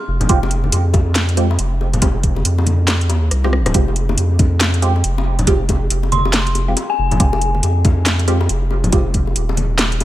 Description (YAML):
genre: deep dubstep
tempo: 139 BPM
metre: 4/4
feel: swing 61% on 16ths, half-time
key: F minor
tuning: A4 = 441 Hz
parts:
  - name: saturated sub bass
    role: bass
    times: 0.1-10.0 s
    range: Eb1 to F2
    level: -17 LUFS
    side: equal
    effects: none
  - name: garage drum kit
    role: drums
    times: 0.2-10.0 s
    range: handclaps, hi-hat, rim click, snare drum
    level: -19 LUFS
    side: equal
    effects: none
  - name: congas and bongos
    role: percussion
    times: 0.2-10.0 s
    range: none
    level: -24 LUFS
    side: left 3 dB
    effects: dub echo
  - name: filtered dub chord stab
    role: stabs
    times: 0.3-9.1 s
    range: Ab3 to G4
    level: -24 LUFS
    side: right 3 dB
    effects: phaser, dub echo
  - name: electronic kick drum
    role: drums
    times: 0.3-9.2 s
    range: none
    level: -15 LUFS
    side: equal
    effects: none
  - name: dark detuned synth bell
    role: melody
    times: 6.1-7.5 s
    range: Ab5 to C6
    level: -23 LUFS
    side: left 2 dB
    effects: chorus, phaser, dub echo
room: digital ambience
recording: none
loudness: -14 LUFS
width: side -14 dB against mid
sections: 0.0-10.0 A section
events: drum fill 3.3-3.7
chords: 0.0 F5